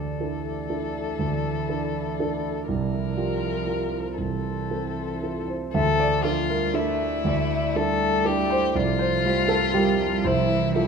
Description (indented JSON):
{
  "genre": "neoclassical piano and strings",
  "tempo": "120 BPM",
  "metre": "3/4",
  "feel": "rubato",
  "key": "D minor",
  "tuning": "A4 = 440 Hz",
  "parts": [
    { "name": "rich violin", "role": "melody", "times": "0.0-10.9 s", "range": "E4 to Bb4", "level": "-27 LUFS", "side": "left 7 dB", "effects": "none" },
    { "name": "rich cello", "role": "second line", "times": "0.0-10.9 s", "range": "E3 to A3", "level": "-34 LUFS", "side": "right 6 dB", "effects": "none" },
    { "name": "dark grand piano", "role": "accompaniment", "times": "0.0-10.9 s", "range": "C2 to E5", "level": "-24 LUFS", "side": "right 3 dB", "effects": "none" },
    { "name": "deep dark ambient pad", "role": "sustained chords", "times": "0.0-10.9 s", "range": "F3 to Bb5", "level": "-35 LUFS", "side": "left 3 dB", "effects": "chorus, built-in reverb" }
  ],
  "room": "moderate scoring stage reverb, RT60 1.4 s",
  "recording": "minimal, uncompressed stereo recording",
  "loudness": "-22 LUFS",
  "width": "side -6 dB against mid",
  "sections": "0.0-5.7 A section; 5.7-10.9 B section",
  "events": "none",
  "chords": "0.0 Dsus2; 2.7 C7sus4; 4.2 Fmaj7/C; 5.7 Dsus2; 8.8 C7sus4; 10.2 Fmaj7/C",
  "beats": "0.20 0.70 | 1.19 1.68 2.18 | 2.68 3.17 3.67 | 4.18 4.70 5.22 | 5.74 6.24 6.74 | 7.25 7.76 8.26 | 8.75 9.25 9.74 | 10.25 10.74"
}